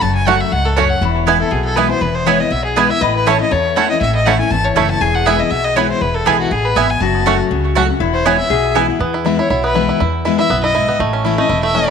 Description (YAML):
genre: bluegrass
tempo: 240 BPM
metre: 4/4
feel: swing 54% on 8ths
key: E major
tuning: A4 = 441 Hz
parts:
  - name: rich fiddle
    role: melody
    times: 0.0-11.9 s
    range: F#4 to A5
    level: -18 LUFS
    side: left 2 dB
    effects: none
  - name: picked steel-string acoustic guitar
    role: accompaniment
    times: 0.0-11.9 s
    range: E2 to F#4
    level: -20 LUFS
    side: left 10 dB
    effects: none
  - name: upright bass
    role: bass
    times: 0.0-11.9 s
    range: E1 to E2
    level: -20 LUFS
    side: right 1 dB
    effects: none
  - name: bluegrass banjo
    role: melody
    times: 0.3-11.9 s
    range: A3 to F#4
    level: -22 LUFS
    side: right 6 dB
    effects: tape echo
  - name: mandolin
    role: stabs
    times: 0.3-8.9 s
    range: A3 to A5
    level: -18 LUFS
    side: right 11 dB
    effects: tape echo
  - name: lap resonator guitar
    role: second line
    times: 1.0-9.0 s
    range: E4 to B4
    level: -23 LUFS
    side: left 10 dB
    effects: none
room: moderate echo chamber reverb, RT60 1.9 s, studio reverb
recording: 1960s-style stereo with parts hard left and right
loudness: -12 LUFS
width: side -6 dB against mid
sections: 0.0-9.0 A section; 9.0-11.9 B section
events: fiddle solo 9.0-11.9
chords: 0.0 F#m; 1.0 E; 3.0 A; 5.0 E; 7.0 F#m; 8.0 E; 11.0 A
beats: | 0.02 0.27 0.52 0.77 | 1.02 1.27 1.52 1.77 | 2.02 2.27 2.52 2.77 | 3.02 3.27 3.52 3.77 | 4.02 4.27 4.51 4.76 | 5.01 5.26 5.51 5.76 | 6.01 6.26 6.51 6.76 | 7.01 7.26 7.51 7.76 | 8.01 8.26 8.51 8.76 | 9.01 9.26 9.50 9.75 | 10.00 10.25 10.50 10.75 | 11.00 11.25 11.49 11.74